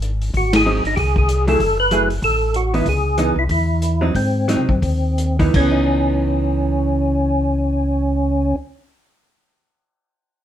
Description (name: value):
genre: soul jazz organ trio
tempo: 162-190 BPM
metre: 4/4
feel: swing 61% on 8ths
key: C# minor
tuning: A4 = 440 Hz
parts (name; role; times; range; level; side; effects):
- mellow tonewheel organ; bass; 0.0-8.5 s; F#1 to B#2; -20 LUFS; left 1 dB; slow rotary speaker
- vintage drum kit; drums; 0.0-5.6 s; crash cymbal, hi-hat, kick drum, ride cymbal, snare drum; -23 LUFS; left 1 dB; none
- percussive tonewheel organ; melody; 0.4-8.6 s; B#3 to B4; -19 LUFS; equal; slow rotary speaker, chorus vibrato
- vintage hollow-body jazz guitar; accompaniment; 0.7-8.8 s; E3 to G#4; -22 LUFS; right 4 dB; none
room: moderate studio reverb, RT60 0.6 s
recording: minimal, uncompressed stereo recording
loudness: -16 LUFS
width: side -10 dB against mid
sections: 0.0-5.5 A section; 5.5-8.5 B section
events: band accent 0.5; slowing down 2.9-5.5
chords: 0.3 G#7; 1.6 F#m9; 2.9 C#m9; 4.1 G#7; 5.5 C#m9